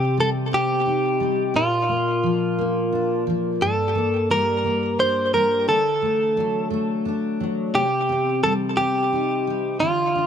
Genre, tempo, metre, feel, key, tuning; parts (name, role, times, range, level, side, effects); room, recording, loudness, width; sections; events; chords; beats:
pop; 58 BPM (dotted quarters); 6/8; straight; A4 = 440 Hz
direct-recorded clean electric guitar; melody; 0.0-10.3 s; F4 to C5; -21 LUFS; equal; digital delay
picked steel-string acoustic guitar; accompaniment; 0.0-10.3 s; G2 to Eb4; -24 LUFS; equal; double-tracked left and right
light reverb, small room ambience; -19 LUFS; side -8 dB against mid
0.0-10.3 A section
0.0 Cm; 1.5 Bb; 3.6 Gm; 5.7 D; 7.7 Cm
0.51 | 1.54 2.58 | 3.61 4.64 | 5.67 6.71 | 7.74 8.77 | 9.80